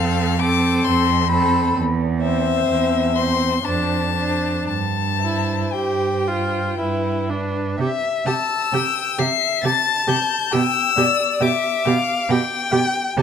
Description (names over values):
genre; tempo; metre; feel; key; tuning
classical, slow romantic movement for string quartet; 56-69 BPM; 3/4; rubato; C major; A4 = 440 Hz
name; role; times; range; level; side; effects
rich violin; melody; 0.0-12.7 s; E5 to C7; -22 LUFS; left 8 dB; none
warm violin; second line; 0.0-13.2 s; A4 to A5; -25 LUFS; left 4 dB; none
rich viola; accompaniment; 0.0-13.2 s; C4 to G4; -24 LUFS; right 2 dB; none
rich cello; bass; 0.0-13.2 s; E2 to C3; -23 LUFS; right 5 dB; none
room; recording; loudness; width
moderate recital hall reverb, RT60 1.7 s; close, detailed microphones; -17 LUFS; side -8 dB against mid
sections
0.0-7.8 A section; 7.8-13.2 B section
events
none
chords
0.0 F; 1.8 C/E; 3.7 Dm7/F; 4.7 C/G; 6.8 G; 7.8 C; 10.5 G/B